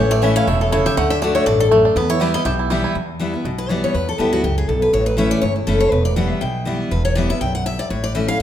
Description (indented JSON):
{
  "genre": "bluegrass",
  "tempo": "242 BPM",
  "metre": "4/4",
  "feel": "swing 55% on 8ths",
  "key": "E dorian",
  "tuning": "A4 = 440 Hz",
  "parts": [
    { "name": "bluegrass banjo", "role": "melody", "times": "0.0-3.0 s", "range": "G3 to G4", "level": "-22 LUFS", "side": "right 7 dB", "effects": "none" },
    { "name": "picked steel-string acoustic guitar", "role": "melody", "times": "0.0-8.4 s", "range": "E4 to G5", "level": "-20 LUFS", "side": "left 1 dB", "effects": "none" },
    { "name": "picked steel-string acoustic guitar", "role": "accompaniment", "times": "0.0-8.4 s", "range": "E2 to F#4", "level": "-21 LUFS", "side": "left 2 dB", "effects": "none" },
    { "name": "upright bass", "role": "bass", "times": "0.0-8.4 s", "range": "E1 to E2", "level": "-22 LUFS", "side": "equal", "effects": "none" }
  ],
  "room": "moderate large studio reverb, RT60 1.3 s",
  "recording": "minimal, uncompressed stereo recording",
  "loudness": "-16 LUFS",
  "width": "side -10 dB against mid",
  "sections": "0.0-3.0 A section; 3.0-8.4 B section",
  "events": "steel-string acoustic guitar solo 0.0-3.0",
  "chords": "0.0 A; 1.0 D; 2.0 Em; 4.9 A; 5.9 Em; 7.9 A"
}